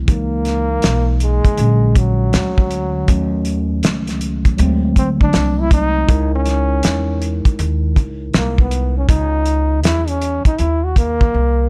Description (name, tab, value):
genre	hip hop, jazz-hop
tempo	80 BPM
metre	4/4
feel	swing 65% on 16ths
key	C# dorian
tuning	A4 = 439 Hz
part	mellow tine electric piano	accompaniment	0.0-9.1 s	D3 to A#4	-24 LUFS	equal	none
part	upright bass	bass	0.0-11.7 s	A#1 to E2	-20 LUFS	equal	none
part	mellow trombone	melody	0.1-11.7 s	F#3 to F#4	-23 LUFS	equal	none
part	cloth-damped thuddy drum kit	drums	0.1-11.3 s	hi-hat, kick drum, snare drum	-18 LUFS	equal	none
room	studio reverb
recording	none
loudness	-16 LUFS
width	mono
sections	0.1-11.7 A section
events	trombone solo 0.1-11.7; drum fill 11.3-11.7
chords	0.1 C#m69; 1.6 A#7alt; 3.1 D#m7b5; 4.6 D7#11; 6.1 C#m69